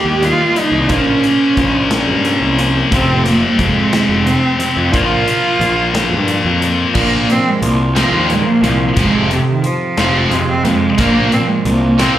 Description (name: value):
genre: quiet-loud alternative rock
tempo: 59 BPM (dotted quarters)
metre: 6/8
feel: straight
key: unclear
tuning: A4 = 440 Hz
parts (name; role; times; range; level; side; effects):
- rich cello; melody; 0.0-12.2 s; C3 to G4; -16 LUFS; right 2 dB; none
- twangy electric guitar; arpeggios; 0.0-12.2 s; F2 to C4; -23 LUFS; right 1 dB; analog chorus, slapback echo
- scooped high-gain guitar; riff; 0.0-12.2 s; F2 to Eb4; -17 LUFS; left 5 dB; distortion
- fuzz picked electric bass; bass; 0.0-12.2 s; F1 to G2; -18 LUFS; equal; overdrive
- big rock drum kit; drums; 0.2-12.2 s; crash cymbal, hi-hat, kick drum, snare drum; -22 LUFS; equal; none
- high-gain distorted guitar; riff; 7.0-12.2 s; F2 to Bb3; -20 LUFS; right 9 dB; distortion
room: light reverb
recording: live gig heard through the venue's PA, club reverb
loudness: -11 LUFS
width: side -12 dB against mid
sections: 0.0-7.0 A section; 7.0-12.2 B section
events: cello solo 7.0-12.2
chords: 0.0 Eb; 0.9 Bbm; 2.9 Fm; 4.9 Bb5; 7.0 Bbsus2; 9.0 Fm; 11.0 Bbsus2